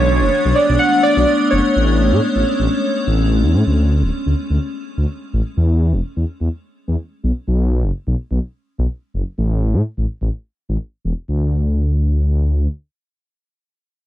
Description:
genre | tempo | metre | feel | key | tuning
IDM | 126 BPM | 4/4 | straight | D lydian | A4 = 437 Hz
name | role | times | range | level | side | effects
warbly lo-fi synth keys | melody | 0.0-3.1 s | C#5 to F#5 | -18 LUFS | right 1 dB | chorus, vintage 12-bit sampler grit, tape echo
icy glass pad | sustained chords | 0.0-3.6 s | G#3 to D4 | -19 LUFS | left 2 dB | chorus, built-in reverb
dark detuned saw bass | bass | 0.0-12.7 s | D1 to A2 | -16 LUFS | equal | none
room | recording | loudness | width
light reverb, digital ambience | none | -15 LUFS | side -13 dB against mid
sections
0.0-3.7 A section; 3.7-11.3 B section; 11.3-14.1 C section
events
none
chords
0.0 Bm7; 1.8 Amaj7; 3.7 D5; 5.6 E5; 7.5 B5; 9.4 A5; 11.3 N.C.

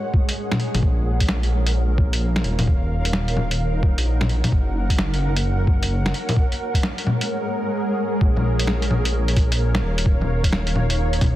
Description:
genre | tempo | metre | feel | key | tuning
future garage | 130 BPM | 4/4 | swing 64% on 16ths | Bb minor | A4 = 440 Hz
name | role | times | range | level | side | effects
granular cloud pad | sustained chords | 0.0-11.4 s | Ab3 to Gb5 | -26 LUFS | right 1 dB | built-in reverb, vintage 12-bit sampler grit, sidechain pumping
electronic kick drum | drums | 0.1-11.3 s | none | -19 LUFS | equal | overdrive
lo-fi sampler-style drum kit | drums | 0.3-11.3 s | bongos, hi-hat, snare drum | -24 LUFS | left 1 dB | overdrive
dark detuned saw bass | bass | 0.7-11.3 s | Eb1 to Bb1 | -21 LUFS | equal | sidechain pumping
room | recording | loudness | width
light reverb | dense, heavily limited modern master | -18 LUFS | side -14 dB against mid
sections
0.0-8.2 A section; 8.2-11.4 B section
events
none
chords
0.0 Ab7sus4; 0.8 Bbm; 2.7 Ebm7; 4.5 Gb; 6.4 Ab7sus4; 8.2 Bbm; 10.1 Ebm7

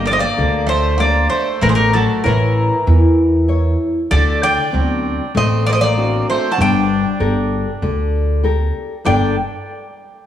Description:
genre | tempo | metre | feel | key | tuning
greek folk, Greek bouzouki band | 97 BPM | 4/4 | straight | G harmonic minor | A4 = 440 Hz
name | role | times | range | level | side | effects
Greek bouzouki | melody | 0.0-9.3 s | A4 to A5 | -19 LUFS | equal | none
Greek bouzouki | second line | 0.0-9.3 s | E3 to F#4 | -23 LUFS | right 3 dB | none
nylon-string guitar | accompaniment | 0.0-9.4 s | G2 to D5 | -20 LUFS | left 3 dB | none
upright bass | bass | 0.0-9.3 s | G1 to E2 | -17 LUFS | equal | none
room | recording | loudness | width
moderate plate reverb, RT60 2.5 s | heard from further back in the room, studio reverb | -13 LUFS | side -10 dB against mid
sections
0.0-9.1 A section; 9.1-10.3 B section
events
none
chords
0.0 Gm; 1.6 A; 4.1 D7; 6.6 Gmadd9

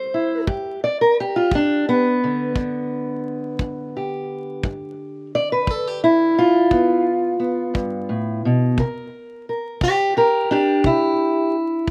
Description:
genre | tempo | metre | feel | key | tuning
acoustic country blues, solo or duo | 58 BPM (dotted quarters) | 12/8 | straight | G mixolydian | A4 = 441 Hz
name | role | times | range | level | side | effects
fingerpicked steel-string acoustic guitar | melody | 0.0-11.9 s | G2 to D5 | -20 LUFS | equal | none
kick drum | drums | 0.5-11.9 s | none | -25 LUFS | equal | none
room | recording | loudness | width
little or no reverb | recorded outdoors, with no room sound, vinyl crackle | -20 LUFS | mono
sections
0.0-11.9 A section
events
none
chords
0.5 G7; 8.8 C7

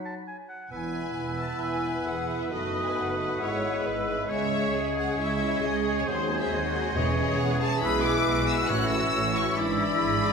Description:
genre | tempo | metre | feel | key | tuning
quick classical-period movement for symphony orchestra | 135 BPM | 4/4 | rubato | E major | A4 = 441 Hz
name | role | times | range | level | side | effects
warm clarinet | second line | 0.0-10.3 s | D#4 to G#4 | -35 LUFS | right 1 dB | none
mellow bassoon | accompaniment | 0.0-10.2 s | E3 to B3 | -35 LUFS | right 2 dB | none
mellow French horn section | sustained chords | 0.0-10.3 s | E3 to E4 | -33 LUFS | left 2 dB | none
clear oboe | second line | 0.1-10.3 s | B4 to A5 | -35 LUFS | equal | none
warm symphonic violin section | melody | 0.7-10.3 s | B#4 to F#6 | -32 LUFS | left 4 dB | none
mellow hollow small flute group | second line | 0.7-10.3 s | D#6 to G#6 | -33 LUFS | left 1 dB | none
warm chamber cello section | bass | 0.7-10.3 s | C#2 to B2 | -34 LUFS | right 3 dB | none
warm symphonic double bass section | bass | 0.7-10.3 s | E1 to D#2 | -35 LUFS | right 3 dB | none
rich chamber violin section | second line | 0.9-10.3 s | E4 to E5 | -36 LUFS | left 3 dB | none
rich symphonic viola section | accompaniment | 1.6-10.3 s | E4 to C#5 | -35 LUFS | right 1 dB | none
timpani | percussion | 7.0-9.3 s | E2 to A2 | -35 LUFS | equal | none
room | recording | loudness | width
wet scoring stage reverb, RT60 1.9 s | minimal, uncompressed stereo recording | -24 LUFS | side -5 dB against mid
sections
0.7-10.3 A section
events
none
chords
0.0 B (rootless); 0.7 E; 2.5 B7/F#; 3.4 E/G#; 4.3 C#m; 6.1 G#7/D#; 7.0 C#m/E; 7.8 E7/B; 8.7 A; 9.6 E7/G#

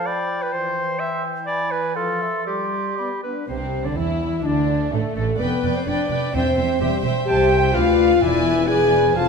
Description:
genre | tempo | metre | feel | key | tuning
quick classical-period movement for symphony orchestra | 127 BPM | 2/4 | rubato | C major | A4 = 440 Hz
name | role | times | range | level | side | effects
bright clarinet | second line | 0.0-9.3 s | G4 to G#5 | -27 LUFS | right 1 dB | none
mellow hollow concert flute | second line | 0.0-9.3 s | G4 to C6 | -29 LUFS | right 1 dB | none
warm oboe | second line | 0.0-3.1 s | D5 to G#5 | -29 LUFS | right 2 dB | none
mellow French horn section | sustained chords | 0.0-9.3 s | E3 to G#4 | -22 LUFS | left 5 dB | none
warm chamber violin section | melody | 3.5-9.3 s | A3 to A5 | -30 LUFS | left 1 dB | none
warm chamber violin section | second line | 3.5-9.3 s | A3 to E5 | -31 LUFS | left 2 dB | none
warm chamber viola section | accompaniment | 3.5-9.3 s | A3 to C5 | -28 LUFS | right 2 dB | none
clear chamber double bass section | bass | 3.5-9.3 s | E1 to E2 | -26 LUFS | right 6 dB | none
dark studio cello section | bass | 3.5-9.3 s | C2 to E3 | -27 LUFS | right 5 dB | none
timpani | percussion | 6.3-8.9 s | E2 | -30 LUFS | right 2 dB | none
room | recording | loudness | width
wet scoring stage reverb, RT60 1.6 s | minimal, uncompressed stereo recording | -18 LUFS | side -5 dB against mid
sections
0.0-3.5 A section; 3.5-9.3 B section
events
none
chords
0.1 G7/F; 0.5 C/E; 2.0 F; 2.5 Gsus4; 3.0 G/B; 3.5 C; 4.5 D5; 5.4 G7/F; 6.3 C/E; 7.3 Am/C; 7.7 Bdim/D; 8.2 E7

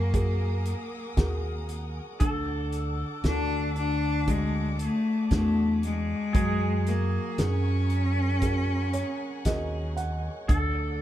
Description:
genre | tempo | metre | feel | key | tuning
acoustic folk-pop ballad | 58 BPM | 4/4 | straight | unclear | A4 = 441 Hz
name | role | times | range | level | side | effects
bright cello | melody | 0.0-10.0 s | G#3 to D4 | -29 LUFS | left 2 dB | none
pedal steel guitar | second line | 0.0-11.0 s | G#4 to A#4 | -38 LUFS | right 2 dB | none
dark grand piano | accompaniment | 0.0-11.0 s | D3 to F#5 | -35 LUFS | right 2 dB | none
warm studio string section | sustained chords | 0.0-11.0 s | A4 to D#6 | -42 LUFS | equal | none
upright bass | bass | 0.0-11.0 s | D2 to F#2 | -28 LUFS | equal | none
loose indie drum kit | drums | 0.1-10.7 s | hi-hat, kick drum, snare drum | -28 LUFS | equal | none
room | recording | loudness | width
little or no reverb | dark, warm production | -25 LUFS | side -12 dB against mid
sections
0.0-11.0 A section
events
none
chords
0.0 F#add9; 2.2 D; 6.4 F#add9; 10.5 D

